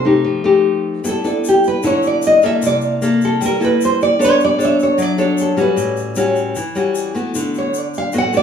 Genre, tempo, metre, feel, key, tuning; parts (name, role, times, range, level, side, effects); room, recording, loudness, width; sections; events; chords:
bossa nova; 152 BPM; 4/4; straight; A4 = 439 Hz
nylon-string guitar; melody; 0.0-8.4 s; D4 to F#5; -16 LUFS; right 1 dB
nylon-string guitar; accompaniment; 0.0-8.4 s; A2 to C#5; -16 LUFS; left 3 dB
tube shaker; percussion; 1.0-8.4 s; -33 LUFS; left 4 dB
wet large studio reverb, RT60 0.9 s; band playing live in one room, small room ambience; -14 LUFS; side -7 dB against mid
0.0-8.4 A section
nylon-string guitar solo 0.0-8.4
0.3 F9; 1.0 G69; 2.6 C6; 4.2 Bm9; 5.8 A13; 7.3 D6